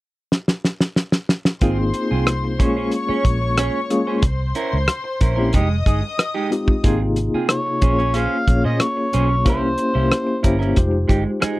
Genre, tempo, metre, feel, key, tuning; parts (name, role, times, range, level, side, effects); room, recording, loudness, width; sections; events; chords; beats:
lush 1970s-style soul; 92 BPM; 4/4; straight; Ab major; A4 = 440 Hz
cloth-damped thuddy drum kit; drums; 0.3-11.6 s; hi-hat, kick drum, rim click, snare drum; -18 LUFS; equal
dark studio string section; second line; 1.6-6.8 s; C5 to Eb6; -26 LUFS; left 3 dB
mellow tine electric piano; accompaniment; 1.6-11.6 s; C3 to Db5; -22 LUFS; left 2 dB; medium tremolo
clean electric guitar; riff; 1.6-11.6 s; Ab3 to Db5; -25 LUFS; right 5 dB
vintage muted fingered electric bass; bass; 1.6-11.5 s; F1 to Bb2; -21 LUFS; equal
overdriven harmonica; melody; 7.5-10.4 s; C5 to F5; -22 LUFS; equal; slapback echo
little or no reverb; dry, close 1970s-style studio recording; -17 LUFS; side -18 dB against mid
0.0-1.6 A section; 1.6-6.8 B section; 6.8-11.6 C section
drum fill 0.3-1.6
0.0 N.C.; 1.6 Ab6; 2.6 Bbm9; 4.2 C7b9; 5.5 Fm9; 6.8 Ab6; 7.8 Bbm9; 9.5 C7b9; 10.8 Fm9
0.31 0.96 | 1.62 2.27 2.92 3.58 | 4.23 4.88 5.54 6.19 | 6.84 7.50 8.15 8.80 | 9.46 10.11 10.76 11.42